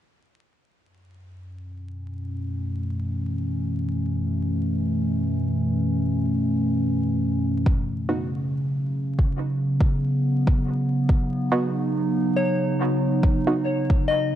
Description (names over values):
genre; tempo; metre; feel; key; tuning
ambient dub; 70 BPM; 4/4; swing 56% on 16ths; F# dorian; A4 = 436 Hz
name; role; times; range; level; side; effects
warbly tape-like pad; sustained chords; 0.8-14.4 s; F#2 to D#4; -23 LUFS; equal; chorus, built-in reverb
electronic kick drum; drums; 7.7-14.1 s; none; -20 LUFS; equal; overdrive
filtered dub chord stab; stabs; 8.1-13.6 s; B3 to F#4; -27 LUFS; right 2 dB; chorus, dub echo
soft synth bell; arpeggios; 12.4-14.4 s; C#5 to D#5; -26 LUFS; left 4 dB; chorus, dub echo
room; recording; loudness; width
light reverb, digital ambience; echo-heavy mix, vinyl crackle, nothing above 10.8 kHz; -21 LUFS; side -11 dB against mid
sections
0.8-14.4 A section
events
filter sweep on ambient pad 0.8-14.4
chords
0.8 F#m; 7.7 B